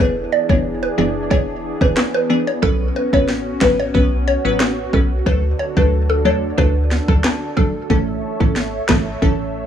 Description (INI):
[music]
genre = dancehall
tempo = 91 BPM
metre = 4/4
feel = straight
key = A major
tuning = A4 = 441 Hz
[part]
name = mallet-like synth pluck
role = melody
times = 0.0-7.7 s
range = A4 to D5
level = -21 LUFS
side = equal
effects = chorus, phaser, tape echo
[part]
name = wavetable chord stab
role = accompaniment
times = 0.0-9.7 s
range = E3 to B4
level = -20 LUFS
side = equal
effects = none
[part]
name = warm analog pad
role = sustained chords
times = 0.0-9.7 s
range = D3 to E5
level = -25 LUFS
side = equal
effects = lush chorus, sidechain pumping
[part]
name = woody FM bass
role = bass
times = 0.0-9.6 s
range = E1 to E2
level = -21 LUFS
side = equal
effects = none
[part]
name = afro-pop drum kit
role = drums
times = 0.5-9.4 s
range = handclaps, kick drum, rim click, snare drum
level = -18 LUFS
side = equal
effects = none
[sound]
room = little or no reverb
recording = none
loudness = -15 LUFS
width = side -9 dB against mid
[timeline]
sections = 0.0-9.7 A section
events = none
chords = 0.0 E7; 2.6 Bsus2; 5.3 D; 7.9 A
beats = 0.65 1.31 1.97 | 2.63 3.29 3.94 4.60 | 5.26 5.92 6.58 7.24 | 7.90 8.56 9.22